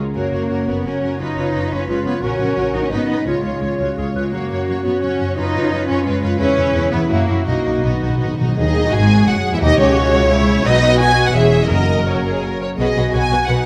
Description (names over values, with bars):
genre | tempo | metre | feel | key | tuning
classical | 172 BPM | 3/4 | rubato | F# major, B major from 6.4 s | A4 = 440 Hz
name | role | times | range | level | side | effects
concert harp | arpeggios | 0.0-13.7 s | E2 to F#5 | -27 LUFS | equal | none
warm symphonic cello section | bass | 0.0-13.6 s | C#2 to D#4 | -24 LUFS | equal | none
warm symphonic violin section | second line | 0.1-13.6 s | C#4 to C#5 | -30 LUFS | equal | none
warm symphonic violin section | melody | 0.2-13.7 s | C#5 to G#5 | -24 LUFS | equal | none
flute section | second line | 0.2-13.5 s | B4 to G#5 | -29 LUFS | equal | none
warm clarinet | second line | 0.2-8.4 s | D#4 to B4 | -30 LUFS | equal | none
warm symphonic viola section | accompaniment | 0.2-13.7 s | D#4 to A#4 | -27 LUFS | equal | none
dark French horn section | sustained chords | 0.2-13.7 s | C#3 to C#5 | -26 LUFS | equal | none
rich symphonic double bass section | bass | 0.2-13.6 s | E1 to F#2 | -24 LUFS | equal | none
timpani | percussion | 7.5-8.6, 11.7-12.2 s | F#2 to B2 | -24 LUFS | equal | none
room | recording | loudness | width
wet scoring stage reverb, RT60 1.7 s | none | -17 LUFS | mono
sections
0.2-8.6 A section; 8.6-13.7 B section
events
timpani fill 7.5-8.6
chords
0.2 F#; 1.2 C#7/F#; 2.2 F#/A#; 2.9 G#m; 3.3 C#; 4.3 F#; 5.4 C#7/F#; 6.4 C#m7/E; 7.1 F#7; 7.5 B; 9.6 A#dim7; 10.7 B; 11.3 C#m/E; 11.7 F#; 12.8 B